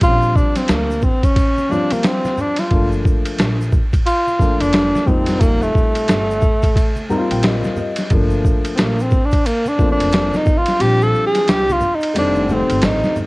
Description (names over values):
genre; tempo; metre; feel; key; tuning
hip hop, jazz-hop; 89 BPM; 4/4; swing 61% on 16ths; G minor; A4 = 436 Hz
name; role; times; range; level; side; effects
breathy tenor saxophone; melody; 0.0-13.2 s; A3 to A4; -18 LUFS; equal; none
dark baby grand piano; accompaniment; 0.0-13.3 s; Bb2 to Bb5; -22 LUFS; left 2 dB; cassette tape
upright bass; bass; 0.0-13.3 s; F1 to D2; -22 LUFS; equal; none
boom bap sampler-style drum kit; drums; 0.0-13.1 s; hi-hat, kick drum, ride cymbal, snare drum; -17 LUFS; equal; cassette tape
egg shaker and congas; percussion; 0.0-13.3 s; none; -30 LUFS; right 1 dB; none
room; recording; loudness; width
light reverb, small room ambience; home recording on cassette; -14 LUFS; side -23 dB against mid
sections
0.0-13.3 A section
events
tenor saxophone solo 0.0-13.3; grand piano fill 6.8-8.1; kick muted 10.8-13.3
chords
0.0 Bb69 (rootless); 2.7 Gm7; 5.1 F9sus4; 8.1 Gm7 (rootless); 10.8 Bb69; 12.1 F7